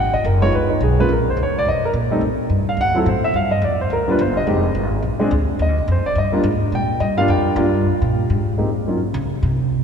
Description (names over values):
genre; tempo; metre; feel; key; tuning
jazz piano trio; 213 BPM; 4/4; swing 60% on 8ths; Eb major; A4 = 440 Hz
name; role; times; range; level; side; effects
warm upright piano; melody; 0.0-9.0 s; F#3 to G5; -19 LUFS; equal; none
upright bass; bass; 0.0-9.8 s; F1 to Db3; -19 LUFS; equal; none
room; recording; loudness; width
wet cathedral reverb, RT60 4.2 s; recorded in a church or concert hall; -16 LUFS; side -7 dB against mid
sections
0.0-7.8 A section; 7.8-9.8 A section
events
upright piano solo 0.0-7.8; upright bass solo 7.8-9.8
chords
0.0 Abm7; 0.5 Db7; 1.1 Bbm; 2.2 Fadd9 (rootless); 2.8 D7; 3.3 Gm7; 4.5 Fm7; 5.0 Bb7; 5.6 Ebmaj7; 7.8 N.C.